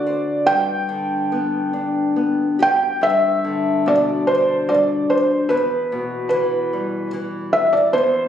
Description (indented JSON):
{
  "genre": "children's music, lullaby",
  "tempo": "72 BPM",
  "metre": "3/4",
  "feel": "rubato",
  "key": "G major",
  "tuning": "A4 = 440 Hz",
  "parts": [
    { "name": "felt-muted upright piano", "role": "melody", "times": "0.0-8.3 s", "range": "B4 to G5", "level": "-18 LUFS", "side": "right 1 dB", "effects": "slapback echo" },
    { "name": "nylon-string guitar", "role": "accompaniment", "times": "0.0-8.3 s", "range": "E2 to C5", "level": "-22 LUFS", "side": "left 3 dB", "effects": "none" }
  ],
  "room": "moderate scoring stage reverb, RT60 1.6 s",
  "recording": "recorded on a phone in the room, club reverb",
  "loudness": "-17 LUFS",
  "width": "side -9 dB against mid",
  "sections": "0.0-3.0 A section; 3.0-8.3 B section",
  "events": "none",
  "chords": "0.5 G; 5.5 Em"
}